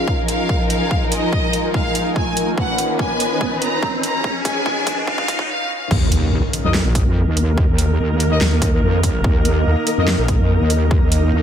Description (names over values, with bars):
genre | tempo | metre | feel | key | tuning
heavy wobble dubstep | 144 BPM | 4/4 | half-time | unclear | A4 = 442 Hz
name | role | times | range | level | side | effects
bright symphonic violin section | melody | 0.0-5.8 s | Eb5 to Bb5 | -23 LUFS | equal | ping-pong delay
warm symphonic string section | sustained chords | 0.0-11.4 s | D#3 to B4 | -25 LUFS | equal | sidechain pumping, low-pass filter
riser and impact | sound effects | 1.4-7.6 s | none | -25 LUFS | equal | none
granular cloud pad | texture | 0.0-11.4 s | D#3 to Bb5 | -25 LUFS | equal | built-in reverb, sidechain pumping
electronic kick drum | drums | 0.1-11.0 s | none | -20 LUFS | equal | studio reverb
dubstep drum kit | drums | 0.3-11.2 s | crash cymbal, handclaps, hi-hat, snare drum | -23 LUFS | right 1 dB | studio reverb
wobble bass | bass | 5.9-11.4 s | Bb1 to F2 | -17 LUFS | equal | chorus, overdrive
clear brass ensemble | stabs | 6.6-10.1 s | Eb4 to Eb5 | -25 LUFS | left 4 dB | ping-pong delay
room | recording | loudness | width
digital ambience | high-pass filter | -15 LUFS | side -9 dB against mid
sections
0.0-5.9 A section; 5.9-11.4 B section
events
build-up 0.0-5.9; filter sweep 0.0-5.9; riser 1.4-5.5; drum fill 2.6-5.5; break 5.5-5.9; drop 5.9-11.4; impact 5.9-7.6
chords
0.0 Ebsus2; 2.6 Badd9/D#; 4.2 Db; 5.9 Eb5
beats
0.08 0.49 | 0.91 1.33 1.74 2.16 | 2.58 2.99 3.41 3.83 | 4.24 4.66 5.08 5.49 | 5.91 6.33 6.74 7.16 | 7.58 7.99 8.41 8.83 | 9.24 9.66 10.08 10.49 | 10.91 11.33